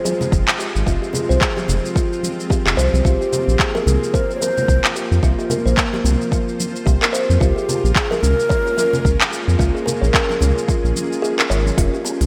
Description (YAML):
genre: organic downtempo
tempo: 110 BPM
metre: 4/4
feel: swing 58% on 16ths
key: unclear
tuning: A4 = 440 Hz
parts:
  - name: bowed-like drone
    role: sustained chords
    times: 0.0-12.3 s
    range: F3 to G5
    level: -28 LUFS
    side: equal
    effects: built-in reverb, sidechain pumping
  - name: kalimba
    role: arpeggios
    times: 0.0-12.0 s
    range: F4 to Db5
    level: -26 LUFS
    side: equal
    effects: delay
  - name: organic electronic drum kit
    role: drums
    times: 0.1-12.3 s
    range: handclaps, hi-hat, shaker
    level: -24 LUFS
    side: equal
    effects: gated reverb
  - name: congas and bongos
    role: percussion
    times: 0.1-12.2 s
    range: none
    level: -31 LUFS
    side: equal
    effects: none
  - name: round analog bass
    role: bass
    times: 0.3-12.3 s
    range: F1 to F2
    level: -19 LUFS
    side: equal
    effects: none
  - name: electronic kick drum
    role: drums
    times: 0.3-11.9 s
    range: none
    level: -22 LUFS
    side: equal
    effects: overdrive
  - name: breathy mellow ney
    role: melody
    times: 3.1-9.3 s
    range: G4 to Db5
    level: -27 LUFS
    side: equal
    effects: delay
room: moderate lush hall reverb, RT60 1.9 s, small room ambience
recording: bright 1980s-style digital production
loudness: -18 LUFS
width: mono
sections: 0.0-11.8 A section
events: kick drops out 11.2-11.8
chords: 0.0 Fmadd9; 3.0 C7sus4; 7.4 Db6